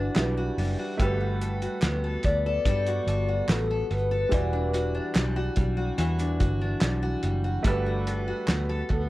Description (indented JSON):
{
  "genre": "indie pop, bedroom pop",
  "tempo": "72 BPM",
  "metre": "4/4",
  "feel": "straight",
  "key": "E minor",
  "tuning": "A4 = 438 Hz",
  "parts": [
    { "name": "warbly nostalgic lead", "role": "melody", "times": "0.0-9.0 s", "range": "A4 to D5", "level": "-28 LUFS", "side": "left 2 dB", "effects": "tremolo, lush chorus, slapback echo" },
    { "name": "picked steel-string acoustic guitar", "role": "accompaniment", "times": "0.0-9.1 s", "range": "E3 to A4", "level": "-31 LUFS", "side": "left 2 dB", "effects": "lush chorus, warbly pitch drift" },
    { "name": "warm upright piano", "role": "accompaniment", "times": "0.0-9.1 s", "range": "G3 to D5", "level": "-34 LUFS", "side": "right 4 dB", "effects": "none" },
    { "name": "vintage muted fingered electric bass", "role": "bass", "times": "0.0-9.1 s", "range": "E1 to G2", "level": "-28 LUFS", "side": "equal", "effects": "none" },
    { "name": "cloth-damped thuddy drum kit", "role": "drums", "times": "0.2-9.1 s", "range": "hi-hat, kick drum, snare drum", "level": "-26 LUFS", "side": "equal", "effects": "none" },
    { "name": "group handclap", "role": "percussion", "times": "0.2-8.7 s", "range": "none", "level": "-38 LUFS", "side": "right 2 dB", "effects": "none" }
  ],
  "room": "light reverb",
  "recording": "worn, warbling old tape, cassette tape, warbly pitch drift",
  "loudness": "-24 LUFS",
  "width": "side -17 dB against mid",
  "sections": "0.0-9.1 A section",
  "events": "none",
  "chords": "0.0 Em9; 1.0 Gmaj9; 4.3 Em9; 7.6 Gmaj9"
}